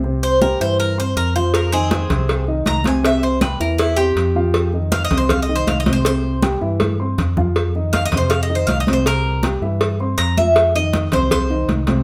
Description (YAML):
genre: latin, salsa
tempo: 160 BPM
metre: 4/4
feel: straight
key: unclear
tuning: A4 = 440 Hz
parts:
  - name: dark concert grand piano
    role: accompaniment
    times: 0.0-12.0 s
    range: C3 to C6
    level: -24 LUFS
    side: equal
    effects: none
  - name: deep dub fingered electric bass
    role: bass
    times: 0.0-12.0 s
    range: C2 to G2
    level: -23 LUFS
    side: equal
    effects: none
  - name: congas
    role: percussion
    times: 0.0-12.0 s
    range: none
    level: -25 LUFS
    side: equal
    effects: none
  - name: Cuban tres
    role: melody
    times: 0.2-11.7 s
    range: C4 to Bb5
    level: -22 LUFS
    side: equal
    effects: none
  - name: cowbell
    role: percussion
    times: 1.5-12.0 s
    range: none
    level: -26 LUFS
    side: equal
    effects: none
room: moderate large studio reverb, RT60 0.9 s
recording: band playing live in one room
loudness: -18 LUFS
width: mono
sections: 0.0-12.0 A section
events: Cuban tres solo 0.0-12.0; drum fill 6.8-7.5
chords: 0.0 C; 1.5 Fm7; 3.0 C; 4.5 F5; 6.0 C; 7.5 F5; 9.1 C7; 10.6 F5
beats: | 0.03 0.41 0.78 1.16 | 1.53 1.91 2.29 2.66 | 3.04 3.41 3.79 4.17 | 4.54 4.92 5.29 5.67 | 6.05 6.42 6.80 7.17 | 7.55 7.93 8.30 8.68 | 9.05 9.43 9.81 10.18 | 10.56 10.93 11.31 11.69